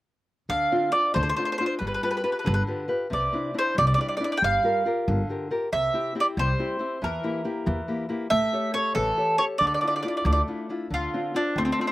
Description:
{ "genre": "italian folk, Italian serenade", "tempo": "92 BPM (dotted quarters)", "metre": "6/8", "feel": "straight", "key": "D minor", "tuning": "A4 = 440 Hz", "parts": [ { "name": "mandolin", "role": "melody", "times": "0.5-11.9 s", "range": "C4 to G5", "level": "-24 LUFS", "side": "right 1 dB", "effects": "none" }, { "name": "nylon-string guitar", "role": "accompaniment", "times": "0.5-11.9 s", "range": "C3 to C#5", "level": "-29 LUFS", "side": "left 2 dB", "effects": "none" }, { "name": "upright bass", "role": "bass", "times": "0.5-11.7 s", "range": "G1 to E2", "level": "-27 LUFS", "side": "equal", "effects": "none" } ], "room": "little or no reverb", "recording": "recorded outdoors, with no room sound", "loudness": "-23 LUFS", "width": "side -16 dB against mid", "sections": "0.5-10.9 A section; 10.9-11.9 A section", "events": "none", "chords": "0.5 Dm7; 1.8 G7; 3.1 Cadd9; 4.4 Gm7; 5.7 C; 7.0 Edim; 8.3 A7; 9.6 Dmadd9; 10.9 Dm7" }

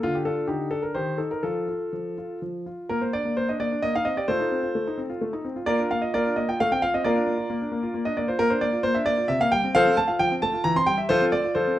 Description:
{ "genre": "classical-period piano sonatina", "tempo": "131 BPM", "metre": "3/4", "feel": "rubato", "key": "Bb major, F major from 8.4 s", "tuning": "A4 = 441 Hz", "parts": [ { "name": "warm concert grand piano", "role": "solo", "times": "0.0-11.8 s", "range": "C3 to C6", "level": "-22 LUFS", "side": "equal", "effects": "none" } ], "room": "moderate recital hall reverb, RT60 1.2 s", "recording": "dark, warm production", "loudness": "-22 LUFS", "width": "side -13 dB against mid", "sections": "0.0-2.9 A section; 2.9-11.8 B section", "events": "none", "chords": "0.0 Dmadd11; 0.9 Cm/Eb; 1.4 N.C.; 2.9 Bb; 3.8 Cm7/Bb; 4.3 F7/A; 5.7 Bb; 6.6 F/A; 7.0 Bb; 9.3 C5; 9.8 F; 10.7 C/E; 11.1 F" }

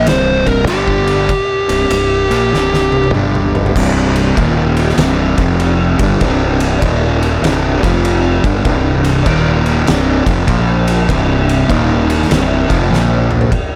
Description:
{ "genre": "stoner and doom metal", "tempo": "98 BPM", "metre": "4/4", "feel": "swing 65% on 8ths", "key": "C minor", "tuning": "A4 = 440 Hz", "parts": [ { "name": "fuzz lead guitar", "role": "melody", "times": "0.0-3.1 s", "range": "G4 to C5", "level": "-18 LUFS", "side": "equal", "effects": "distortion, tape echo" }, { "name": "fuzz guitar", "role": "riff", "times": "0.0-13.5 s", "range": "C2 to Bb3", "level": "-17 LUFS", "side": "equal", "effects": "distortion" }, { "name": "growling fingered electric bass", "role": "bass", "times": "0.0-13.5 s", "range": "C1 to Bb1", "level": "-19 LUFS", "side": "equal", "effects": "overdrive" }, { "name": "oversized low-tuned drum kit", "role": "drums", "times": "0.1-13.7 s", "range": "crash cymbal, kick drum, ride cymbal, snare drum, toms", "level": "-19 LUFS", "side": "equal", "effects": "none" } ], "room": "light reverb", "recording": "none", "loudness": "-13 LUFS", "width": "mono", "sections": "0.0-3.8 A section; 3.8-13.5 B section", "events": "drum fill 2.5-3.8, 12.9-13.5", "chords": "0.0 C5; 0.7 G5; 1.6 C5; 3.1 G5; 3.8 C5; 4.4 Eb5; 5.0 C5; 5.3 F5; 5.9 C5; 6.8 Eb5; 7.4 C5; 7.7 F5; 8.3 C5; 9.3 Eb5; 9.9 C5; 10.5 Bb5; 11.1 C5; 11.7 Eb5; 12.3 C5; 12.9 Bb5" }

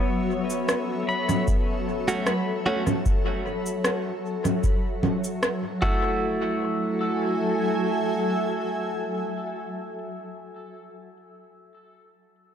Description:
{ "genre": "ambient dub", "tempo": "76 BPM", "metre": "4/4", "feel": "straight", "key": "F# minor", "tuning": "A4 = 438 Hz", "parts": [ { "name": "granular cloud pad", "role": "sustained chords", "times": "0.0-10.1 s", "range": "F#3 to G#5", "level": "-28 LUFS", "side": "left 1 dB", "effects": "built-in reverb" }, { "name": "pedal steel guitar", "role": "arpeggios", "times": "0.0-10.0 s", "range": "B3 to B5", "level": "-32 LUFS", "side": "left 3 dB", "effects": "tape echo" }, { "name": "electronic shaker, rim click and congas", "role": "drums", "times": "0.5-5.6 s", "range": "none", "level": "-27 LUFS", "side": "right 1 dB", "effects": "overdrive, dub echo" }, { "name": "electronic kick drum", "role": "drums", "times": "1.5-6.0 s", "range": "none", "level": "-25 LUFS", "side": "equal", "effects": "none" }, { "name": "direct-recorded clean electric guitar", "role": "stabs", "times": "2.1-10.0 s", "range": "A3 to F#4", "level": "-29 LUFS", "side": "right 3 dB", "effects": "dub echo" } ], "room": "moderate concert hall reverb, RT60 2.1 s", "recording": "none", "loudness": "-23 LUFS", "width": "side -8 dB against mid", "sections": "0.0-6.2 A section; 6.2-9.4 B section", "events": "filter sweep on pedal steel guitar 0.0-6.2", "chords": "0.0 F#m7" }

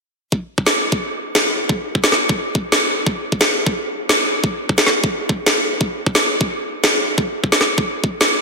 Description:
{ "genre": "drum and bass", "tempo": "175 BPM", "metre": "4/4", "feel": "straight", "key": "none", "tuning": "none", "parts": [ { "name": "electronic kick drum", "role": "drums", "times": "0.3-8.1 s", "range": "none", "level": "-18 LUFS", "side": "equal", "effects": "overdrive, high-pass filter on kick" }, { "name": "electronic snare drum", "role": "drums", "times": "0.7-8.3 s", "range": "none", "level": "-16 LUFS", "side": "equal", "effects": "overdrive" } ], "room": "wet lush hall reverb, RT60 2.3 s", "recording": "dense, heavily limited modern master", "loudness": "-15 LUFS", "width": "side -3 dB against mid", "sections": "0.3-8.4 A section", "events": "none", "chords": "none" }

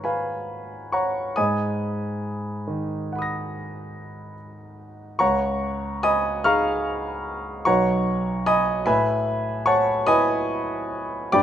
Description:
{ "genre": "classical, impressionist solo piano", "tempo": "45-50 BPM (dotted quarters)", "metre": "9/8", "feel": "rubato", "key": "unclear", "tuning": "A4 = 440 Hz", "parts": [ { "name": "clear concert grand piano", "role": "solo", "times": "0.0-11.4 s", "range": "B1 to A#6", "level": "-21 LUFS", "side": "equal", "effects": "none" } ], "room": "light reverb", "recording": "close, detailed microphones", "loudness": "-21 LUFS", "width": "side -10 dB against mid", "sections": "0.0-11.4 A section", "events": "none", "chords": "0.0 G#m6; 1.4 Bmaj7/G#; 5.2 C#add9; 7.7 Badd9; 8.9 Aadd9" }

